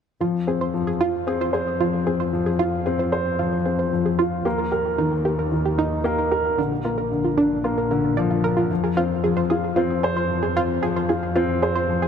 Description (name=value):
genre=piano and strings electronica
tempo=113 BPM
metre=4/4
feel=straight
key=F dorian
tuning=A4 = 440 Hz
part: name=analog pluck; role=arpeggios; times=0.2-12.1 s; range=D4 to D5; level=-26 LUFS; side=right 4 dB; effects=chorus, digital delay
part: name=dark upright piano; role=riff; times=0.2-12.1 s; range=D3 to C5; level=-21 LUFS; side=left 2 dB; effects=digital delay
part: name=clear studio double bass section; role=bass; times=0.2-12.1 s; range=Bb1 to F2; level=-30 LUFS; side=equal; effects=none
room=moderate huge ambient reverb, RT60 8.0 s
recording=none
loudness=-20 LUFS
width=side -7 dB against mid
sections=0.2-12.1 A section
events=none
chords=0.2 Fm; 4.5 Eb; 6.6 Bb; 8.7 Fm